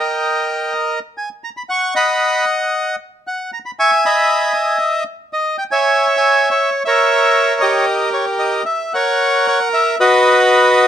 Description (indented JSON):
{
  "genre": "tango",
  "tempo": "116 BPM",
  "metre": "4/4",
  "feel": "rubato",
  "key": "unclear",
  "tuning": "A4 = 440 Hz",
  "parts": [
    { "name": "bandoneon", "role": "solo", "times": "0.0-10.9 s", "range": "F#4 to C#6", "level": "-13 LUFS", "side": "equal", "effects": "none" }
  ],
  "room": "light reverb",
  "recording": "none",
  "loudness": "-13 LUFS",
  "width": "side -9 dB against mid",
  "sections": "0.0-10.0 A section",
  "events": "none",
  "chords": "0.0 D#; 1.7 D#m7; 3.8 C#madd9; 5.8 A#dim; 7.9 Gdim7; 8.9 F#; 10.0 B5",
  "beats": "0.11 0.63 1.16 | 1.69 2.21 2.74 3.26 | 3.77 4.29 4.81 5.32 | 5.83 6.35 6.86 7.37 | 7.89 8.41 8.93 9.46 | 9.98 10.51"
}